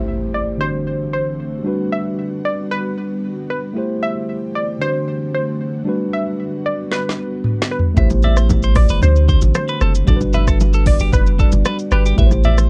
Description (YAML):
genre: afrobeats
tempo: 114 BPM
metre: 4/4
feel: straight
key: G major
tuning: A4 = 444 Hz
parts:
  - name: mellow tine electric piano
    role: accompaniment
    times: 0.0-12.7 s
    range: D3 to D5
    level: -25 LUFS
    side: equal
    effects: none
  - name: ethereal airy pad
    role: sustained chords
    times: 0.2-12.7 s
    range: D3 to G4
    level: -31 LUFS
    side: equal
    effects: ensemble chorus, built-in reverb
  - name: impact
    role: sound effects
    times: 0.0-1.7 s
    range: none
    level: -31 LUFS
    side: equal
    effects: none
  - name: glassy wavetable pluck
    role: melody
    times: 0.3-12.6 s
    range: B4 to E5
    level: -26 LUFS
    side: equal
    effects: chorus, digital delay
  - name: afro-pop drum kit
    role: drums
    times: 6.9-12.7 s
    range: hi-hat, kick drum, rim click, shaker, snare drum, toms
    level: -19 LUFS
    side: equal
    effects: none
  - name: clean electric guitar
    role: riff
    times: 8.0-12.7 s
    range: G4 to E5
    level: -28 LUFS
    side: equal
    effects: digital delay
  - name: punchy sub bass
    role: bass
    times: 8.0-12.7 s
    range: F#1 to D2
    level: -17 LUFS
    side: equal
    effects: none
  - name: congas and bongos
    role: percussion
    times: 8.0-12.6 s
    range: none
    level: -27 LUFS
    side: equal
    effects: none
room: little or no reverb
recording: dark, warm production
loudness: -17 LUFS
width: mono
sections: 0.0-12.7 A section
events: impact 0.0-1.7; drum fill 6.9-8.0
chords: 0.0 Am7; 0.6 D7; 1.7 Gmaj7; 3.8 Am7; 4.8 D7; 5.9 Gmaj7; 8.0 Am7; 9.0 D7; 10.1 Gmaj7; 12.2 Am7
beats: 0.07 0.60 1.13 | 1.65 2.18 2.71 3.23 | 3.76 4.28 4.81 5.34 | 5.86 6.39 6.92 7.44 | 7.97 8.49 9.02 9.55 | 10.07 10.60 11.13 11.65 | 12.18